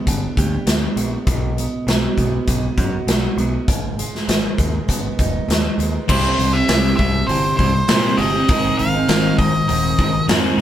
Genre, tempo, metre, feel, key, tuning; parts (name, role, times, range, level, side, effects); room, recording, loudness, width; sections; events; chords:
quiet-loud alternative rock; 100 BPM; 4/4; straight; A4 = 444 Hz
picked steel-string acoustic guitar; arpeggios; 0.0-10.6 s; G2 to G4; -23 LUFS; right 4 dB
growling picked electric bass; bass; 0.1-10.6 s; Eb1 to Bb2; -22 LUFS; equal; overdrive
big rock drum kit; drums; 0.1-10.4 s; crash cymbal, hi-hat, kick drum, snare drum; -19 LUFS; equal
octave-fuzz lead guitar; melody; 6.1-10.2 s; C5 to F5; -20 LUFS; right 1 dB; distortion
sludgy distorted guitar; riff; 6.1-10.6 s; Ab2 to C4; -22 LUFS; left 6 dB; overdrive
light reverb; band playing live in one room; -16 LUFS; side -11 dB against mid
0.0-6.1 A section; 6.1-10.6 B section
0.0 G; 1.3 B; 3.7 Abm; 6.1 C; 8.5 Ab